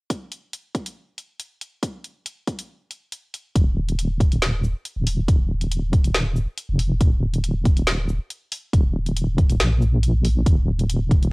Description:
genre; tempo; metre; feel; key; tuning
deep dubstep; 139 BPM; 4/4; half-time; unclear; A4 = 441 Hz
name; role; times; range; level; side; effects
deep house drum kit; drums; 0.1-11.3 s; hi-hat, shaker, snare drum; -26 LUFS; equal; cassette tape
electronic kick drum; drums; 0.1-11.2 s; none; -18 LUFS; equal; high-pass filter on kick, cassette tape
deep soft wobble bass; bass; 3.6-11.3 s; Eb1 to Bb1; -21 LUFS; equal; chorus
room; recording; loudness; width
little or no reverb; home recording on cassette; -19 LUFS; side -30 dB against mid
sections
0.1-3.6 A section; 3.6-11.3 B section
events
none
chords
none

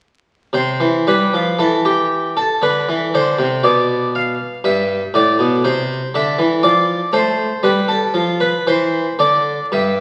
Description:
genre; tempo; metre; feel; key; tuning
classical, baroque-style suite movement for harpsichord; 59 BPM; 3/4; uneven beats, rubato; C major; A4 = 438 Hz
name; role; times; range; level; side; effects
harpsichord; solo; 0.5-10.0 s; G2 to F5; -16 LUFS; equal; none
room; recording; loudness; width
wet recital hall reverb, RT60 1.4 s; very old 78 rpm record, vinyl crackle; -17 LUFS; mono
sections
0.5-10.0 A section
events
none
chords
0.5 C; 3.6 G/B; 5.6 C; 6.6 Dm/F

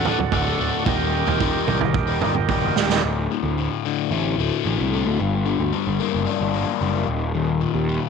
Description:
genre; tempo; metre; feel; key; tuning
psychedelic rock; 111 BPM; 4/4; straight; unclear; A4 = 441 Hz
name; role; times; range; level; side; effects
percussive tonewheel organ; sustained chords; 0.0-3.0 s; F#4 to G5; -25 LUFS; right 10 dB; slow rotary speaker, overdrive
overdriven semi-hollow guitar; riff; 0.0-8.1 s; D2 to G4; -23 LUFS; left 12 dB; phaser
vintage drum kit; drums; 0.1-3.0 s; kick drum, snare drum, toms; -23 LUFS; right 7 dB; none
fuzz picked electric bass; bass; 0.2-8.0 s; D1 to Eb2; -24 LUFS; right 1 dB; overdrive
room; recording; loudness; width
light reverb, studio reverb; 1960s-style stereo with parts hard left and right; -19 LUFS; side -6 dB against mid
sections
0.0-3.0 A section; 3.0-8.1 B section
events
drum fill 2.5-3.0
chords
0.0 D; 0.9 Eb; 3.0 D5; 5.2 Gm; 7.1 Eb5

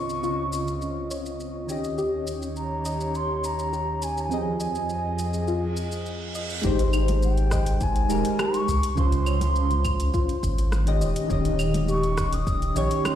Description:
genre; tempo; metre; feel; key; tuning
sunset chillout; 103 BPM; 4/4; straight; Ab major; A4 = 439 Hz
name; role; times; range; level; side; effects
mellow hollow wooden flute; melody; 0.0-13.2 s; G5 to Eb6; -30 LUFS; left 1 dB; digital delay
soft electric-piano-like synth keys; accompaniment; 0.0-13.2 s; Db3 to Eb5; -28 LUFS; moving between left 3 dB and right 5 dB; chorus, phaser, auto-pan
airy breathy pad; sustained chords; 0.0-6.6 s; Db2 to Eb5; -31 LUFS; equal; chorus
deep house drum kit; drums; 0.1-13.2 s; claves, hi-hat, rim click, shaker; -36 LUFS; right 1 dB; none
soft round pluck; arpeggios; 0.2-13.0 s; F4 to Eb5; -33 LUFS; left 3 dB; chorus, ping-pong delay
reverse cymbal; sound effects; 5.7-6.6 s; none; -36 LUFS; right 5 dB; none
warm sub bass; bass; 6.6-12.9 s; Eb1 to Db2; -24 LUFS; equal; none
electronic kick drum; drums; 6.6-12.6 s; none; -28 LUFS; equal; none
congas; percussion; 7.1-13.2 s; none; -35 LUFS; right 3 dB; none
room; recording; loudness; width
light reverb; played on a big sound system in a bare room, large studio reverb; -23 LUFS; side -10 dB against mid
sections
0.0-6.6 A section; 6.6-13.2 B section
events
reverse cymbal 5.7-6.6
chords
0.0 Dbmaj7; 1.7 Eb7; 4.3 Fm7; 6.6 Abmaj7; 8.7 Dbmaj7; 11.0 Eb7

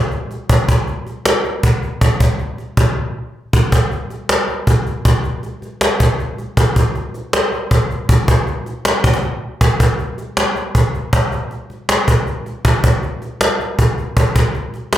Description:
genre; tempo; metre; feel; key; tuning
hip hop; 158 BPM; 4/4; half-time; none; none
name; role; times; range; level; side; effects
cajon; drums; 0.1-15.0 s; none; -14 LUFS; equal; none
room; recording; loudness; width
light reverb, studio ambience; none; -14 LUFS; side -12 dB against mid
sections
0.0-3.5 A section; 3.5-15.0 B section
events
none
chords
none

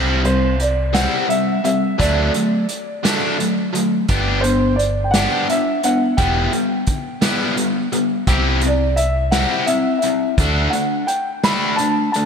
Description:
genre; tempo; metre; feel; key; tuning
indie rock; 57 BPM (dotted quarters); 6/8; straight; C lydian; A4 = 440 Hz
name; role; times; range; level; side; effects
distorted electric guitar; riff; 0.0-12.3 s; F#3 to G4; -19 LUFS; left 1 dB; distortion
deep dub picked electric bass; bass; 0.0-10.7 s; E1 to D2; -20 LUFS; equal; none
vintage drum kit; drums; 0.2-12.3 s; hi-hat, kick drum, snare drum; -22 LUFS; right 1 dB; none
dark upright piano; melody; 0.3-12.3 s; C5 to B5; -21 LUFS; equal; ping-pong delay
room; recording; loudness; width
moderate lush hall reverb, RT60 2.5 s; bright 1980s-style digital production; -16 LUFS; side -6 dB against mid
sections
0.0-12.3 A section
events
none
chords
0.0 C; 2.0 D5; 4.1 G; 6.2 Em; 8.3 C; 10.4 D5

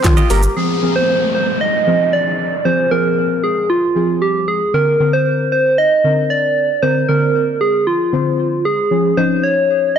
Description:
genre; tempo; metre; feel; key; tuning
dance-pop; 115 BPM; 4/4; straight; unclear; A4 = 437 Hz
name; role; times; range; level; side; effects
soft struck synth lead; melody; 0.0-10.0 s; F4 to Eb5; -15 LUFS; right 1 dB; chorus, ping-pong delay
deep mellow chord stab; accompaniment; 0.0-10.0 s; D3 to C5; -19 LUFS; left 1 dB; chorus, phaser
direct-recorded clean electric guitar; riff; 0.0-0.5 s; Bb3 to Eb5; -26 LUFS; right 6 dB; wide subtle chorus
saturated sub bass; bass; 0.0-0.5 s; G1 to Eb3; -17 LUFS; equal; sidechain pumping
pop drum kit; drums; 0.0-0.6 s; handclaps, hi-hat, kick drum, shaker; -14 LUFS; equal; none
downlifter; sound effects; 0.6-4.7 s; none; -24 LUFS; equal; none
room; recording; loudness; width
moderate lush hall reverb, RT60 1.7 s; dense, heavily limited modern master; -13 LUFS; side -8 dB against mid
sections
0.6-10.0 A section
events
none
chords
0.0 Ebadd9; 0.6 Ab6; 4.7 Bbadd9; 8.9 Db

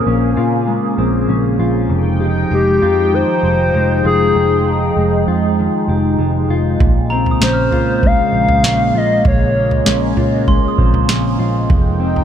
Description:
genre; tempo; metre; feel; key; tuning
dream pop; 98 BPM; 4/4; straight; unclear; A4 = 440 Hz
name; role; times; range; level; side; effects
hollow clarinet-like synth lead; melody; 0.0-10.1 s; G4 to F5; -18 LUFS; left 2 dB; chorus, ping-pong delay
phased analog pad; sustained chords; 0.0-12.2 s; Db3 to G5; -19 LUFS; right 2 dB; phaser, chorus
mellow electric guitar; arpeggios; 0.0-12.2 s; F2 to G4; -20 LUFS; left 4 dB; wide subtle chorus, ping-pong delay
vintage muted picked electric bass; bass; 0.1-12.2 s; F1 to Bb2; -18 LUFS; right 1 dB; none
booming analog drum machine; drums; 6.8-12.2 s; kick drum, snare drum, toms; -15 LUFS; right 1 dB; none
glockenspiel with hard plastic mallets; texture; 7.1-11.8 s; Bb5 to F6; -25 LUFS; right 3 dB; ping-pong delay
room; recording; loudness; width
light reverb; none; -12 LUFS; side -9 dB against mid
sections
0.0-12.2 A section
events
none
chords
0.0 Bbm9; 1.9 Fm9; 6.8 Bbm9; 11.7 Fm9

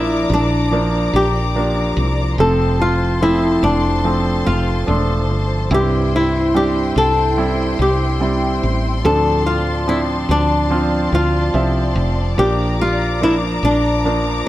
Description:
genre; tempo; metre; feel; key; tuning
pop ballad; 72 BPM; 4/4; straight; unclear; A4 = 440 Hz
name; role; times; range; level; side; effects
flamenco guitar; melody; 0.0-14.4 s; D4 to A4; -18 LUFS; left 1 dB; none
clear baby grand piano; accompaniment; 0.0-14.5 s; G2 to E5; -21 LUFS; right 2 dB; none
rich studio string section; sustained chords; 0.0-14.5 s; F3 to D6; -24 LUFS; left 2 dB; none
woody fretless electric bass; bass; 0.0-14.4 s; E1 to D2; -20 LUFS; equal; lush chorus
room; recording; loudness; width
small room reverb; none; -14 LUFS; side -14 dB against mid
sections
0.0-14.5 A section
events
none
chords
0.0 Bb; 2.4 F; 5.7 C; 9.0 Dm7; 12.4 Bb

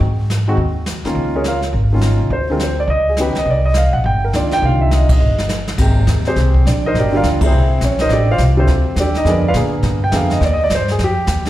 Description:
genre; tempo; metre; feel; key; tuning
jazz piano trio; 208 BPM; 4/4; swing 62% on 8ths; unclear; A4 = 440 Hz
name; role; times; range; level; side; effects
upright bass; bass; 0.0-11.5 s; G1 to Bb2; -16 LUFS; equal; none
jazz brush drum kit; drums; 0.0-11.5 s; brushed snare drum, crash cymbal, hi-hat, kick drum, ride cymbal, snare drum; -20 LUFS; equal; none
warm concert grand piano; melody; 0.5-11.5 s; C3 to G5; -17 LUFS; equal; plate reverb, slapback echo
room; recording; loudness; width
light reverb; live gig heard through the venue's PA, recital hall reverb; -13 LUFS; side -14 dB against mid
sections
0.0-5.8 A section; 5.8-11.5 B section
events
band accent 5.1, 7.4; drum fill 5.2-5.8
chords
0.0 Ab5; 1.2 Db69; 2.3 D7(no3); 2.9 Dbsus2; 3.5 Cm11; 5.8 Abmaj9; 6.9 Gm7; 7.5 C7alt; 8.1 F69; 9.3 Bb7b9; 10.4 Ebadd9

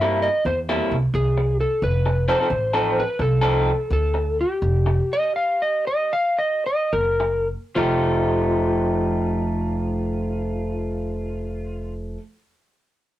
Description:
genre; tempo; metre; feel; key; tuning
electric blues shuffle; 70-88 BPM; 4/4; swing 68% on 8ths; F mixolydian; A4 = 435 Hz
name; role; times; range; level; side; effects
electric slide guitar; melody; 0.0-11.9 s; F4 to F5; -23 LUFS; left 1 dB; none
electric guitar through a small old amp; riff; 0.0-12.2 s; C3 to A4; -23 LUFS; equal; none
upright bass; bass; 0.0-12.1 s; F1 to G2; -24 LUFS; right 1 dB; none
room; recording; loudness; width
moderate studio reverb, RT60 0.6 s; rough rehearsal-room recording, warm saturation; -19 LUFS; side -14 dB against mid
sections
0.0-7.8 A section; 7.8-11.2 B section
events
slowing down 1.8-7.8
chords
0.0 C7; 1.8 F7; 4.6 F7sus2; 6.9 Gb; 7.8 F9

